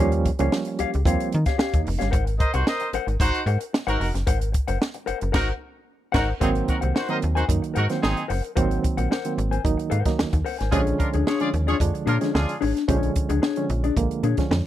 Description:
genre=funk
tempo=112 BPM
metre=4/4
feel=straight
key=unclear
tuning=A4 = 440 Hz
part: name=mellow electric guitar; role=accompaniment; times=0.0-14.5 s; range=D4 to Ab5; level=-28 LUFS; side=left 9 dB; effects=none
part: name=barky reed electric piano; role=stabs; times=0.0-2.1, 6.4-14.7 s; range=D3 to G4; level=-26 LUFS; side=right 5 dB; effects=overdrive, fast tremolo
part: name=slap-like FM bass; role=bass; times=0.0-14.6 s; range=F1 to Eb3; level=-24 LUFS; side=equal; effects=none
part: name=compact cocktail drum kit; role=drums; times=0.1-14.6 s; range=crash cymbal, hi-hat, kick drum, snare drum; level=-25 LUFS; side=equal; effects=none
part: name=clear horn section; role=second line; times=2.4-12.6 s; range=C4 to Eb5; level=-27 LUFS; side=right 1 dB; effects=none
room=small room ambience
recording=dry, close 1970s-style studio recording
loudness=-21 LUFS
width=side -12 dB against mid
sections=0.0-6.4 A section; 6.4-14.7 B section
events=band accent 5.3-6.4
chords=0.0 Eb9; 2.1 Ab9; 10.7 Bb7#9

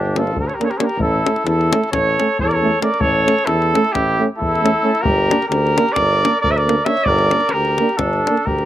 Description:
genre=balkan folk, Balkan brass band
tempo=267 BPM (eighths)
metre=9/8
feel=straight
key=unclear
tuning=A4 = 437 Hz
part: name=warm trumpet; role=melody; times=0.0-8.7 s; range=G4 to E5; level=-18 LUFS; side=right 2 dB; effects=none
part: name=warm flugelhorn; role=second line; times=0.0-8.7 s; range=D4 to C#5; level=-23 LUFS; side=left 2 dB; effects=slapback echo
part: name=warm tuba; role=bass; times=0.0-8.7 s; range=G1 to E2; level=-20 LUFS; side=equal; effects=none
part: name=dark euphonium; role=accompaniment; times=0.2-8.4 s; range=A3 to Bb3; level=-21 LUFS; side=right 4 dB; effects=none
part: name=warm trombone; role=accompaniment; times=0.2-8.4 s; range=C#4 to D4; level=-26 LUFS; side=left 5 dB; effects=none
part: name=davul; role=percussion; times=0.2-8.6 s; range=none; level=-24 LUFS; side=left 3 dB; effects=none
room=little or no reverb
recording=recorded outdoors, with no room sound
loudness=-14 LUFS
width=side -12 dB against mid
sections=1.0-8.7 A section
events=none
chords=0.0 Gm; 1.0 A; 5.0 Gm

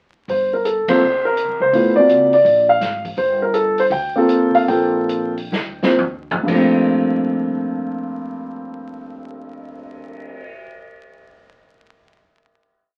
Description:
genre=jazz piano trio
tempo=117-166 BPM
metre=4/4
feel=swing 65% on 8ths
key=G minor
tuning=A4 = 440 Hz
part: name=dark concert grand piano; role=melody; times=0.3-10.4 s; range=G2 to G5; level=-18 LUFS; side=equal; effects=none
part: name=upright bass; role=bass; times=0.3-10.3 s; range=G1 to F2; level=-36 LUFS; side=equal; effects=none
part: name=open jazz drum kit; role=drums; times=0.3-10.5 s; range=crash cymbal, cymbal swell, hi-hat, kick drum, ride cymbal, snare drum, toms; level=-30 LUFS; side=equal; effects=none
room=moderate studio ambience, RT60 0.4 s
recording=very old 78 rpm record, vinyl crackle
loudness=-17 LUFS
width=mono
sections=0.3-6.5 A section; 6.5-10.6 final chord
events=band accent 0.8; slowing down 3.2-6.5; drum fill 5.5-6.5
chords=0.3 Gmadd9; 1.7 D7alt; 3.2 Gm11

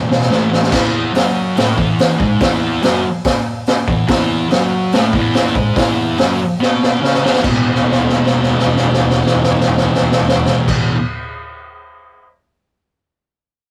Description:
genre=garage rock duo or trio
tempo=143 BPM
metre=4/4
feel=straight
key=E major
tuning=A4 = 440 Hz
part: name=thick fuzz guitar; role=riff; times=0.0-11.0 s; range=E2 to C#4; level=-18 LUFS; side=equal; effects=distortion
part: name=raw garage drum kit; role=drums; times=0.1-12.2 s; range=crash cymbal, hi-hat, kick drum, snare drum, toms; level=-18 LUFS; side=equal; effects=none
room=moderate small room reverb, RT60 0.5 s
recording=rough rehearsal-room recording, warm saturation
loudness=-15 LUFS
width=mono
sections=0.7-7.4 A section; 7.4-10.8 B section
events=drum fill 0.0-0.7, 6.6-7.4, 7.7-10.7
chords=0.3 A5; 0.7 E; 7.4 E5

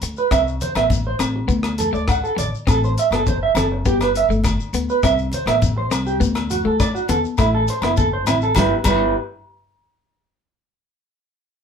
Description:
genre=highlife guitar band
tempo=102 BPM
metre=4/4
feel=straight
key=G major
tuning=A4 = 439 Hz
part: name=clean electric guitar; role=accompaniment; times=0.0-9.0 s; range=G3 to C4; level=-24 LUFS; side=left 4 dB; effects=none
part: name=upright bass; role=bass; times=0.0-9.1 s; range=F#1 to E2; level=-24 LUFS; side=left 1 dB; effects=none
part: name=cloth-damped thuddy drum kit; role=drums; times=0.0-9.0 s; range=crash cymbal, hi-hat, kick drum, rim click, snare drum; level=-23 LUFS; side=left 1 dB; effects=none
part: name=shekere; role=percussion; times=0.0-9.1 s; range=none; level=-27 LUFS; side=left 4 dB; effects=none
part: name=electric guitar through a small old amp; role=arpeggios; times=0.2-9.1 s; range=E4 to F#5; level=-20 LUFS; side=right 4 dB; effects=none
part: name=agogo bells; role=percussion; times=0.3-9.0 s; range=none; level=-29 LUFS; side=left 4 dB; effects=none
part: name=congas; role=percussion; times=0.3-9.1 s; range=none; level=-30 LUFS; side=left 1 dB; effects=none
room=wet small room reverb, RT60 0.5 s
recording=band playing live in one room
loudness=-16 LUFS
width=side -7 dB against mid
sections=0.0-8.6 A section; 8.6-10.9 B section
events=none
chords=0.3 C; 1.5 D5; 2.7 Am; 3.9 G; 5.0 C; 6.2 D; 7.4 Am; 8.6 G6

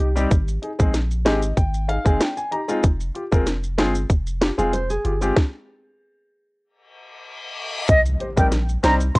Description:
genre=dancehall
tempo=95 BPM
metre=4/4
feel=straight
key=C minor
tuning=A4 = 440 Hz
part: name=clear grand piano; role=accompaniment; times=0.0-9.0 s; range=G3 to Bb5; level=-24 LUFS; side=left 1 dB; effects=none
part: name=nylon-string guitar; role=arpeggios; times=0.0-0.3, 4.6-5.3 s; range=G4 to F5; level=-29 LUFS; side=right 1 dB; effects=none
part: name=punchy sub bass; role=bass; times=0.0-9.2 s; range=F1 to C2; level=-23 LUFS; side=equal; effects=none
part: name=island pop drum kit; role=drums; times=0.0-9.2 s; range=hi-hat, kick drum, snare drum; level=-19 LUFS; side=equal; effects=none
part: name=maracas and timbales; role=percussion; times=0.2-9.2 s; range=none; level=-36 LUFS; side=right 2 dB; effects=none
part: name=reverse cymbal and impact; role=sound effects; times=7.0-9.2 s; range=none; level=-31 LUFS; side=left 1 dB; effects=none
part: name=concert flute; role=melody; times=7.9-9.2 s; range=Eb5 to C6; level=-19 LUFS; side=equal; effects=none
room=little or no reverb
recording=worn, warbling old tape, cassette tape, warbly pitch drift, nothing above 10.5 kHz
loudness=-18 LUFS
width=side -25 dB against mid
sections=0.0-7.9 A section; 7.9-9.2 B section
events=grand piano fill 0.9-2.8; stop 5.4-7.9; reverse cymbal 7.0-7.9; impact 7.9-9.2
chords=0.3 Ab; 2.8 Fmadd9; 5.4 N.C.; 7.9 Cm

